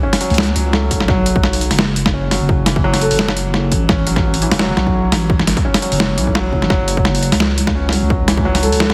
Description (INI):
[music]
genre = half-time drum and bass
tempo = 171 BPM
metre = 4/4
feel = swing 55% on 16ths, half-time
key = unclear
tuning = A4 = 440 Hz
[part]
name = felt-muted upright piano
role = arpeggios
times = 0.0-8.9 s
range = E3 to C#4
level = -23 LUFS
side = equal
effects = delay
[part]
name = boom bap sampler-style drum kit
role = drums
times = 0.1-8.9 s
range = hi-hat, snare drum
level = -20 LUFS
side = equal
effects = overdrive
[part]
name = deep soft wobble bass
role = bass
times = 0.3-8.9 s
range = F#1 to C#2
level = -20 LUFS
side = equal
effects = chorus, tube saturation
[part]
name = electronic kick drum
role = drums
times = 0.9-8.4 s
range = none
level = -21 LUFS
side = equal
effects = none
[part]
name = breathy flute-like synth lead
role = melody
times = 3.0-3.3, 8.6-8.9 s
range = A4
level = -24 LUFS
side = equal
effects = chorus, tremolo, cassette tape, delay
[sound]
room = moderate lush hall reverb, RT60 1.9 s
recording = heavily compressed radio sound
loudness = -15 LUFS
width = mono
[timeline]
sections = 0.0-8.9 A section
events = none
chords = 0.0 F#m; 1.1 B5; 6.7 F#5